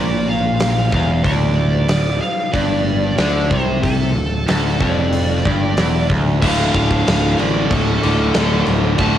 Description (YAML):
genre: hard rock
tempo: 93 BPM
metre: 4/4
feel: straight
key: D minor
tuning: A4 = 436 Hz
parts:
  - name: high-gain lead guitar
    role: melody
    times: 0.0-9.2 s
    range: A4 to A5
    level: -23 LUFS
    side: right 1 dB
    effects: distortion, cassette tape, tape echo
  - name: cranked stack guitar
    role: riff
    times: 0.0-9.2 s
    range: D2 to D3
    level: -22 LUFS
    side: right 7 dB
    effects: overdrive, cassette tape
  - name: crunchy overdriven guitar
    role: riff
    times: 0.0-9.2 s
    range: D2 to D3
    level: -21 LUFS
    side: left 6 dB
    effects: cassette tape
  - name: modern bright picked electric bass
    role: bass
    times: 0.0-9.2 s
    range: D1 to D2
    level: -20 LUFS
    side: equal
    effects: none
  - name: huge arena drum kit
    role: drums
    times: 0.6-9.1 s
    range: crash cymbal, hi-hat, kick drum, snare drum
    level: -20 LUFS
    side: equal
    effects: cassette tape
  - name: overdriven electric guitar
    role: riff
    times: 6.4-9.2 s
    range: D2 to D3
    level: -25 LUFS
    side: equal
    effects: cassette tape
room: light reverb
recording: home recording on cassette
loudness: -14 LUFS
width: side -11 dB against mid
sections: 0.0-6.4 A section; 6.4-9.2 B section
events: none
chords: 0.0 Dm